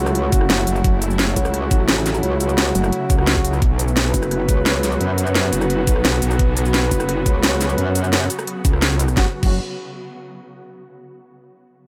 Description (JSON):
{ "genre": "dark technical drum and bass", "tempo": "173 BPM", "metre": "4/4", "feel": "straight", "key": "F# minor", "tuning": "A4 = 440 Hz", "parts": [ { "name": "swarming drone", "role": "sustained chords", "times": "0.0-9.3 s", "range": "C#3 to F#4", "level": "-30 LUFS", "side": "equal", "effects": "built-in reverb, sidechain pumping" }, { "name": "mellow brass ensemble", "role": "stabs", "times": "0.0-9.6 s", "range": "F#3 to B4", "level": "-27 LUFS", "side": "equal", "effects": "vintage 12-bit sampler grit, dub echo" }, { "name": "metallic wobble bass", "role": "bass", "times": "0.0-8.3 s", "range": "F#1 to F#2", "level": "-23 LUFS", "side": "equal", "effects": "chorus" }, { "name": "drum and bass drum kit", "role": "drums", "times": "0.1-9.5 s", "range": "crash cymbal, hi-hat, rim click, shaker, snare drum", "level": "-23 LUFS", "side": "equal", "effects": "none" }, { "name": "electronic kick drum", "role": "drums", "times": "0.3-9.5 s", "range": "none", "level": "-20 LUFS", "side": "equal", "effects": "none" }, { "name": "metallic wobble bass", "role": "bass", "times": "0.5-9.6 s", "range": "F#1 to C#2", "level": "-22 LUFS", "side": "equal", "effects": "chorus, overdrive, sidechain pumping" } ], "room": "little or no reverb", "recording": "none", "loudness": "-18 LUFS", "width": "mono", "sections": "0.0-9.2 A section; 9.2-10.6 B section", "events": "drop 0.0-9.2", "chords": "0.0 F#m7; 3.6 Bsus2; 9.2 F#5" }